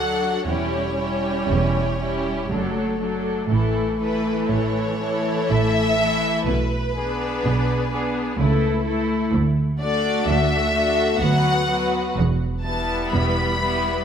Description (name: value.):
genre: classical, slow romantic movement for string orchestra.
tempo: 57-65 BPM.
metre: 3/4.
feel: rubato.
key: D major.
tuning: A4 = 440 Hz.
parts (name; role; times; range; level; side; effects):
rich studio violin section; melody; 0.0-14.0 s; B4 to B5; -25 LUFS; left 2 dB; none.
rich chamber violin section; second line; 0.0-14.0 s; D4 to B4; -26 LUFS; left 3 dB; none.
rich chamber viola section; accompaniment; 0.0-14.0 s; E3 to E4; -25 LUFS; equal; none.
rich chamber double bass section; bass; 0.0-14.0 s; E1 to D2; -26 LUFS; right 2 dB; none.
rich studio cello section; bass; 0.0-13.9 s; C#2 to B2; -27 LUFS; right 3 dB; none.
room: moderate scoring stage reverb, RT60 1.7 s.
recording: none.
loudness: -19 LUFS.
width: side -8 dB against mid.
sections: 0.0-14.0 A section.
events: none.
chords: 0.5 C#dim/E; 2.5 D/F#; 3.5 A; 6.5 G#dim/B; 8.4 A/C#; 9.3 D; 11.2 Bm/D; 12.2 Em.